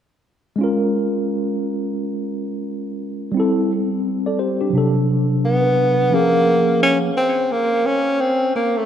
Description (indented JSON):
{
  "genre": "hip hop",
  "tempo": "87 BPM",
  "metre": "4/4",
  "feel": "swing 63% on 16ths",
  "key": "Bb dorian",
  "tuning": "A4 = 440 Hz",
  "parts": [
    { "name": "mellow tine electric piano", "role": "accompaniment", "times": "0.6-7.1 s", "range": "C3 to D5", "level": "-19 LUFS", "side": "equal", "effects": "medium stereo tremolo" },
    { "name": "breathy tenor saxophone", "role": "melody", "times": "5.5-8.9 s", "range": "A3 to Db4", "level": "-16 LUFS", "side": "equal", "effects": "analog delay" }
  ],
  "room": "wet plate reverb, RT60 3.6 s",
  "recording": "dreamy mix soaked in reverb",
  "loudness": "-16 LUFS",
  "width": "side -9 dB against mid",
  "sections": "0.6-6.1 A section; 6.1-8.9 B section",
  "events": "none",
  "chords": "0.6 Bbm7; 3.4 Am7; 4.7 D7; 6.1 Bbm7"
}